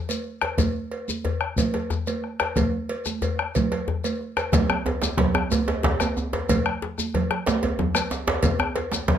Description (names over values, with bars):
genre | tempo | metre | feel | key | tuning
west african traditional, West African drum ensemble | 122 BPM (dotted quarters) | 12/8 | straight | none | none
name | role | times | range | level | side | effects
congas | percussion | 0.1-9.2 s | none | -27 LUFS | right 5 dB | none
cowbell | percussion | 0.1-9.2 s | none | -30 LUFS | right 2 dB | none
shekere | percussion | 0.1-9.1 s | none | -31 LUFS | left 6 dB | none
bombo | percussion | 0.4-9.2 s | none | -25 LUFS | left 3 dB | none
djembe | percussion | 0.4-9.2 s | none | -29 LUFS | left 4 dB | none
djembe | percussion | 4.5-9.2 s | none | -26 LUFS | right 2 dB | none
room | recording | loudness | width
light reverb | close, detailed microphones | -22 LUFS | side -9 dB against mid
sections
0.0-4.5 A section; 4.5-9.2 B section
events
none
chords
none